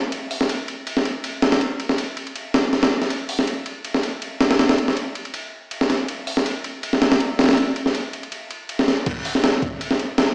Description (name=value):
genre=drum and bass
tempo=161 BPM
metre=4/4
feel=swing 53% on 16ths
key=none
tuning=none
part: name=breakbeat sampler-style drum kit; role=drums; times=0.1-10.3 s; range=crash cymbal, hi-hat, kick drum, ride cymbal, snare drum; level=-22 LUFS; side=equal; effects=none
room=wet digital room reverb, RT60 1.1 s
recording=played on a big sound system in a bare room, large studio reverb, small speaker sound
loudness=-22 LUFS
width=mono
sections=0.0-9.1 A section; 9.1-10.3 B section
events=drop 9.1-10.3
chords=none